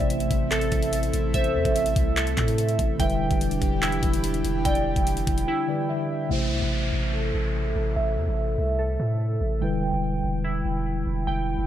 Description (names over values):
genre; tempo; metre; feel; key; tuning
hip hop, trap; 145 BPM; 4/4; half-time; A minor; A4 = 441 Hz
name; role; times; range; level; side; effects
hollow clarinet-like synth lead; second line; 0.0-6.3 s; C5 to E5; -34 LUFS; left 4 dB; chorus, tape echo
mellow tine electric piano; accompaniment; 0.0-11.7 s; C3 to E5; -30 LUFS; left 1 dB; medium stereo tremolo, low-pass filter
airy breathy pad; sustained chords; 0.0-6.3 s; E3 to G4; -33 LUFS; left 2 dB; chorus
glassy digital keys; arpeggios; 0.0-11.7 s; E4 to G5; -28 LUFS; right 2 dB; chorus, low-pass filter, tape echo
long sustained 808-style bass; bass; 0.0-11.7 s; E1 to A2; -27 LUFS; equal; none
trap drum kit; drums; 0.0-5.5 s; handclaps, hi-hat, kick drum; -26 LUFS; equal; none
downlifter; sound effects; 6.3-9.6 s; none; -35 LUFS; equal; none
room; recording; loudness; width
digital ambience; none; -22 LUFS; side -11 dB against mid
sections
0.0-6.3 A section; 6.3-11.7 B section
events
break 5.5-6.3; filter sweep 6.3-11.7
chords
0.0 Am; 3.0 Em7; 6.3 Am; 9.6 Em7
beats
0.10 0.51 0.93 | 1.34 1.75 2.17 2.58 | 3.00 3.41 3.82 4.24 | 4.65 5.07 5.48 5.89 | 6.31 6.72 7.13 7.55 | 7.96 8.38 8.79 9.20 | 9.62 10.03 10.45 10.86 | 11.27